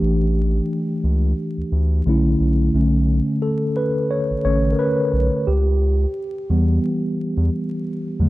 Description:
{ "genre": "lo-fi hip hop", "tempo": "88 BPM", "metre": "4/4", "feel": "swing 57% on 16ths", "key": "B minor", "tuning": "A4 = 440 Hz", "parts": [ { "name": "mellow tine electric piano", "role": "accompaniment", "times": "0.0-8.3 s", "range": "D3 to C#5", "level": "-20 LUFS", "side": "equal", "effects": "medium stereo tremolo, cassette tape, low-pass filter" }, { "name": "round analog bass", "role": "bass", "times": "0.0-8.3 s", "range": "A1 to E2", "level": "-18 LUFS", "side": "equal", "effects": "none" } ], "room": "light reverb", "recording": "dark, warm production, vinyl crackle", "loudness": "-17 LUFS", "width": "side -18 dB against mid", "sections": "0.0-2.7 A section; 2.7-8.3 B section", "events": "tine electric piano solo 2.7-8.3", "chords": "0.0 A7sus4; 2.1 Bm11; 2.7 Bm9; 5.5 C#m7b5" }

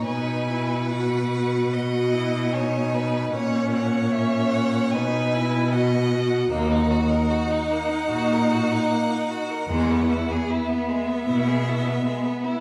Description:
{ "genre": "classical, slow romantic movement for string quartet", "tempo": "75 BPM", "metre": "4/4", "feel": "rubato", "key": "unclear", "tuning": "A4 = 440 Hz", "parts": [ { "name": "rich violin", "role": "melody", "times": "0.0-12.6 s", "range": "E5 to G#5", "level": "-36 LUFS", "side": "equal", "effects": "none" }, { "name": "rich violin", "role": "second line", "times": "0.0-12.6 s", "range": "G#3 to D#5", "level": "-32 LUFS", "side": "equal", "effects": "none" }, { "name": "dark viola", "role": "accompaniment", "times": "0.0-12.6 s", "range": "B3 to F#4", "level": "-28 LUFS", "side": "equal", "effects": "none" }, { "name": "rich cello", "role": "bass", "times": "0.0-11.9 s", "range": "D#2 to B2", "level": "-26 LUFS", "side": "equal", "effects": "none" } ], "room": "wet recital hall reverb, RT60 1.8 s", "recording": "heard from further back in the room", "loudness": "-23 LUFS", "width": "mono", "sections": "0.0-12.6 A section", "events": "none", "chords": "0.1 B; 3.3 F#7/A#; 4.9 B; 6.5 D#m; 9.7 E" }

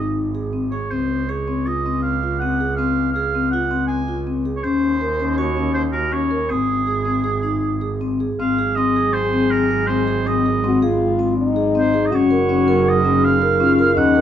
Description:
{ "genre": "contemporary instrumental, chamber music in an uneven meter", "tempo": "161 BPM", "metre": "5/4", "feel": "straight", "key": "Ab mixolydian", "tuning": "A4 = 439 Hz", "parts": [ { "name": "warm oboe", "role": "melody", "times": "0.0-14.2 s", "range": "Ab4 to Ab5", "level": "-22 LUFS", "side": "right 4 dB", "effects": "none" }, { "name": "vibraphone with soft mallets", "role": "arpeggios", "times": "0.0-14.2 s", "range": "C4 to Bb4", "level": "-20 LUFS", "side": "left 4 dB", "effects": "none" }, { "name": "bright double bass", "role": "bass", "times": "0.0-14.2 s", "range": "Gb1 to Eb2", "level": "-24 LUFS", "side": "right 5 dB", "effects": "none" }, { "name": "mellow French horn", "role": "second line", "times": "8.4-14.2 s", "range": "Eb4 to Ab4", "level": "-21 LUFS", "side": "left 2 dB", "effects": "none" }, { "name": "warbly tape-like pad", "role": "sustained chords", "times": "8.4-14.2 s", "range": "Eb3 to Bb4", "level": "-27 LUFS", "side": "right 3 dB", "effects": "chorus, built-in reverb" } ], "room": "moderate recital hall reverb, RT60 1.3 s", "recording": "none", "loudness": "-17 LUFS", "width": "side -10 dB against mid", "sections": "0.0-8.4 A section; 8.4-14.2 B section", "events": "none", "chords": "0.0 Ab; 0.9 Dbmaj7; 4.6 Ebm7; 6.5 Ab; 8.4 Ab7; 12.1 Gb69" }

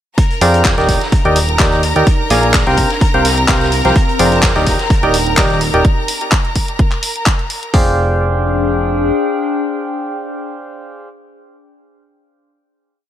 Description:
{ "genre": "piano house", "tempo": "127 BPM", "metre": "4/4", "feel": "swing 54% on 16ths", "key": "F dorian", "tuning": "A4 = 437 Hz", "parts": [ { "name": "bright studio string section", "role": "sustained chords", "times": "0.2-7.7 s", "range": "Bb4 to Bb5", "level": "-20 LUFS", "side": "equal", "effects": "sidechain pumping" }, { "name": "house drum kit", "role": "drums", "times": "0.2-7.9 s", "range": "hi-hat, kick drum", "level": "-14 LUFS", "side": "equal", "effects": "none" }, { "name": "house drum kit", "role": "drums", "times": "0.2-7.7 s", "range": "handclaps, hi-hat", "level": "-18 LUFS", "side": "left 1 dB", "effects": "none" }, { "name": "raw garage drum kit", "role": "drums", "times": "0.2-5.7 s", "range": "hi-hat, snare drum", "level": "-26 LUFS", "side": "equal", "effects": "none" }, { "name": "warbly tape-like pad", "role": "texture", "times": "1.0-11.2 s", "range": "C4 to G5", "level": "-22 LUFS", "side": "left 2 dB", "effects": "chorus, built-in reverb, phaser, sidechain pumping" }, { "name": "percussive organ stab", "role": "riff", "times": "0.4-11.1 s", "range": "Eb3 to Ab5", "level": "-16 LUFS", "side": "right 1 dB", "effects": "chorus, cassette tape, sidechain pumping, tape echo" }, { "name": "fat analog bass", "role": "bass", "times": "0.4-9.1 s", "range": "Eb1 to F2", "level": "-17 LUFS", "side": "equal", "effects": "tube saturation, sidechain pumping" } ], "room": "light reverb, studio ambience", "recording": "none", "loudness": "-11 LUFS", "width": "side -11 dB against mid", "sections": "0.2-7.7 drop; 7.7-11.5 final chord", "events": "drop 0.2-7.7", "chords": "0.2 Fm69; 0.9 Ebmaj7; 2.1 Bb7; 2.8 C7sus4; 4.0 Fm69; 4.7 Ebmaj7; 5.8 N.C.; 7.7 Fm69" }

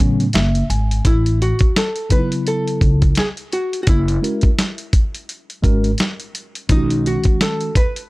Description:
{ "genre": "hip hop, jazz-hop", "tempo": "85 BPM", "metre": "4/4", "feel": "swing 58% on 16ths", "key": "A major", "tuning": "A4 = 442 Hz", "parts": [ { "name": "mellow tine electric piano", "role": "accompaniment", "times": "0.0-7.7 s", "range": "C#3 to G#5", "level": "-22 LUFS", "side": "equal", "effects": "medium stereo tremolo" }, { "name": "upright bass", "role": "bass", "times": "0.0-7.1 s", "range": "F#1 to A2", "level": "-18 LUFS", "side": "equal", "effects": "none" }, { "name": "dusty soul sampler-style drum kit", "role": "drums", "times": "0.0-8.1 s", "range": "hi-hat, kick drum, snare drum", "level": "-16 LUFS", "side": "equal", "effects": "none" }, { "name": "archtop guitar, miked and amplified", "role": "melody", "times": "1.1-8.1 s", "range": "D#4 to B4", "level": "-22 LUFS", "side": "equal", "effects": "none" } ], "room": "little or no reverb", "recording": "dry, gritty hardware recording", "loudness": "-15 LUFS", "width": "side -21 dB against mid", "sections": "0.0-1.1 A section; 1.1-8.1 B section", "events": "tine electric piano fill 0.0-1.1", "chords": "0.0 A69; 1.1 A6; 3.9 F#7; 6.7 B" }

